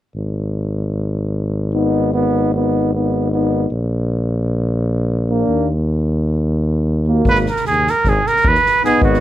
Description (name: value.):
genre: balkan folk, Balkan brass band.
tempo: 304 BPM (eighths).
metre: 9/8.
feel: straight.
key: Ab minor.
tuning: A4 = 438 Hz.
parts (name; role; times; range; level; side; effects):
mellow tuba; bass; 0.2-9.2 s; Ab1 to Eb2; -18 LUFS; equal; none.
bright trombone; accompaniment; 1.7-9.2 s; Bb3 to Cb4; -19 LUFS; right 4 dB; none.
mellow euphonium; accompaniment; 1.7-9.2 s; D4 to Gb4; -21 LUFS; left 9 dB; none.
cornet with straight mute; melody; 7.3-9.2 s; Gb4 to Cb5; -14 LUFS; right 3 dB; plate reverb.
soft-mallet drum kit; percussion; 7.3-9.2 s; kick drum, snare drum; -19 LUFS; equal; none.
room: light reverb.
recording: none.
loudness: -15 LUFS.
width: side -13 dB against mid.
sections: 0.2-7.3 A section; 7.3-9.2 B section.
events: none.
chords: 0.2 Abm; 3.7 N.C.; 5.5 Eb5; 7.3 Abm.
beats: | 0.16 0.36 0.56 0.75 0.95 1.15 1.34 1.54 1.74 | 1.94 2.13 2.33 2.53 2.73 2.92 3.12 3.32 3.51 | 3.71 3.91 4.11 4.30 4.50 4.70 4.89 5.09 5.29 | 5.49 5.68 5.88 6.08 6.27 6.47 6.67 6.86 7.06 | 7.26 7.45 7.65 7.85 8.04 8.24 8.44 8.63 8.83 | 9.03.